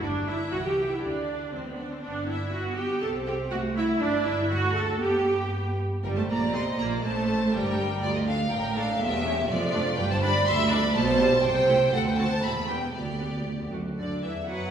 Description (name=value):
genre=quick classical-period movement for string orchestra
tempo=121 BPM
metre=2/4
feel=straight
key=G major, G minor from 6.0 s, G major from 10.0 s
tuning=A4 = 440 Hz
part: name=rich studio violin section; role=melody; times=0.0-14.7 s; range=A4 to C6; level=-31 LUFS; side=left 2 dB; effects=none
part: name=clear symphonic violin section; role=second line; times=0.0-14.7 s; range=F4 to A5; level=-30 LUFS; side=right 2 dB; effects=none
part: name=clear symphonic viola section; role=accompaniment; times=0.0-14.7 s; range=D3 to A4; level=-29 LUFS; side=right 1 dB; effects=none
part: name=rich symphonic cello section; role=bass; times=0.0-14.7 s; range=D2 to B4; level=-30 LUFS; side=right 2 dB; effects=none
part: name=rich symphonic double bass section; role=bass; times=0.0-14.7 s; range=E1 to G2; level=-33 LUFS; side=right 1 dB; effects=none
room=wet recital hall reverb, RT60 1.6 s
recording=recorded in a church or concert hall, studio reverb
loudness=-24 LUFS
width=side -8 dB against mid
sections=0.0-6.0 A section; 6.0-14.0 B section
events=none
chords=0.0 G; 0.5 C; 1.0 Dsus4; 1.5 D; 2.0 G; 3.0 C; 4.0 G; 4.5 D; 5.0 G; 6.0 Gm (rootless); 7.0 Am; 7.5 Gm; 8.0 D5; 9.0 A7/E; 9.5 Dm/F; 10.0 G5; 10.9 G/B; 11.4 Am7/C; 11.9 D7; 12.4 Em; 12.9 G/D; 13.5 D; 14.0 G/D (rootless)